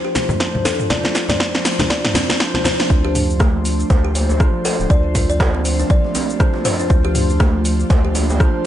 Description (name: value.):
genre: afro house.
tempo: 120 BPM.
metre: 4/4.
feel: swing 58% on 16ths.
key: D minor.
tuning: A4 = 439 Hz.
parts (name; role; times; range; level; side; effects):
ethereal airy pad; sustained chords; 0.0-8.7 s; A3 to C5; -28 LUFS; left 2 dB; ensemble chorus, built-in reverb, phaser, sidechain pumping.
kalimba; arpeggios; 0.0-8.1 s; A3 to D5; -24 LUFS; equal; sidechain pumping, dub echo.
mellow tine electric piano; stabs; 0.0-8.7 s; F3 to C5; -24 LUFS; right 1 dB; phaser, sidechain pumping, dub echo.
deep house drum kit; drums; 0.2-8.5 s; hi-hat, rim click, shaker, snare drum, toms; -20 LUFS; equal; overdrive.
congas; percussion; 0.2-2.8 s; none; -25 LUFS; left 2 dB; none.
electronic kick drum; drums; 0.4-8.5 s; none; -15 LUFS; equal; overdrive, high-pass filter on kick, high-pass filter on room.
round analog bass; bass; 2.9-8.5 s; D1 to D2; -20 LUFS; equal; sidechain pumping.
djembe; percussion; 3.4-8.4 s; none; -26 LUFS; right 3 dB; none.
room: light reverb.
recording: nothing above 10.8 kHz.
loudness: -14 LUFS.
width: side -12 dB against mid.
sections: 0.0-2.9 A section; 2.9-8.7 B section.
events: build-up 0.0-2.9; drum fill 0.0-2.9; filter sweep on kalimba 0.0-2.9; drop 2.9-8.7.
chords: 0.0 Dm7.